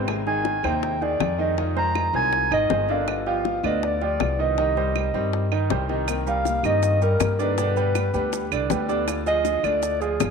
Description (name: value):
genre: latin, Cuban son and guajira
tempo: 160 BPM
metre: 4/4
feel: straight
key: C minor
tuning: A4 = 441 Hz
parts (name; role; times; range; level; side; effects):
- nylon-string guitar; accompaniment; 0.0-10.3 s; B2 to Ab4; -31 LUFS; left 12 dB; none
- clear concert grand piano; arpeggios; 0.0-10.3 s; C3 to Eb5; -27 LUFS; right 8 dB; none
- upright bass; bass; 0.0-10.3 s; G1 to G2; -27 LUFS; equal; none
- bongos; percussion; 0.1-10.3 s; none; -30 LUFS; left 13 dB; none
- claves; percussion; 0.1-10.3 s; none; -35 LUFS; right 14 dB; none
- dark clarinet; melody; 0.3-10.3 s; Ab4 to Bb5; -24 LUFS; equal; none
- maracas; percussion; 6.1-10.3 s; none; -38 LUFS; right 19 dB; none
room: wet spring reverb, RT60 2.0 s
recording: 1960s-style stereo with parts hard left and right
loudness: -20 LUFS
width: side -5 dB against mid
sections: 0.0-10.3 A section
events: none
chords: 0.1 Ab; 1.6 Fm7; 3.1 G7; 4.6 Cm; 6.1 Cm7; 7.6 G; 9.1 Ddim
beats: | 0.08 0.45 0.83 1.20 | 1.58 1.95 2.33 2.70 | 3.08 3.45 3.83 4.20 | 4.58 4.95 5.33 5.71 | 6.08 6.46 6.83 7.21 | 7.58 7.96 8.33 8.71 | 9.08 9.45 9.83 10.20